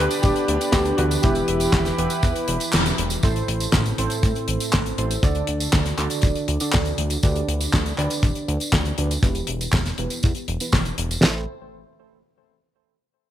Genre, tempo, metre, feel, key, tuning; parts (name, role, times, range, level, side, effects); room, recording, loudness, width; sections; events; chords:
italo disco; 120 BPM; 4/4; straight; A dorian; A4 = 442 Hz
dark baby grand piano; melody; 0.0-2.7 s; D4 to G4; -25 LUFS; equal; ping-pong delay
lush unison pad; sustained chords; 0.0-3.2 s; D3 to B4; -28 LUFS; equal; chorus, vintage 12-bit sampler grit
chorused polysynth; stabs; 0.0-11.4 s; A2 to D5; -28 LUFS; right 3 dB; cassette tape, ping-pong delay
fat analog bass; bass; 0.0-11.5 s; D1 to A2; -26 LUFS; equal
damped 70s drum kit; drums; 0.1-11.2 s; handclaps, hi-hat, snare drum, tambourine; -25 LUFS; left 1 dB
damped 70s drum kit; drums; 0.2-11.3 s; crash cymbal, kick drum, snare drum; -19 LUFS; equal
moderate plate reverb, RT60 1.4 s, small room ambience; bright 1980s-style digital production; -19 LUFS; side -12 dB against mid
0.0-3.2 A section; 3.2-11.2 B section; 11.2-13.2 C section
kick drops out 2.7-3.2; band accent 2.7; filter sweep on analog polysynth 3.2-11.2
0.0 G/D; 1.2 Em; 3.2 Am; 5.2 D; 7.2 G/D; 9.2 Em; 11.2 Am